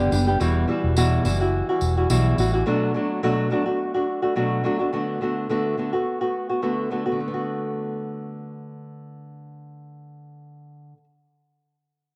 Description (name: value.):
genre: acoustic pop.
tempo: 106 BPM.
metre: 4/4.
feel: swing 55% on 16ths.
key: D major.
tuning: A4 = 441 Hz.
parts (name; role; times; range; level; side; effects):
nylon-string guitar; accompaniment; 0.0-11.0 s; E2 to G4; -25 LUFS; equal; none.
vintage muted fingered electric bass; bass; 0.0-2.6 s; E1 to B1; -24 LUFS; equal; none.
tambourine; percussion; 0.1-2.5 s; none; -37 LUFS; equal; none.
room: moderate spring reverb, RT60 2.6 s.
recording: none.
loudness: -23 LUFS.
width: mono.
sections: 0.0-7.2 A section; 7.2-9.5 B section.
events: none.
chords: 0.4 Emadd9; 2.7 Bm7; 4.9 D6.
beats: | 0.40 0.96 1.53 2.10 | 2.66 3.23 3.79 4.36 | 4.92 5.49 6.06 6.63 | 7.19 7.76 8.33 8.90.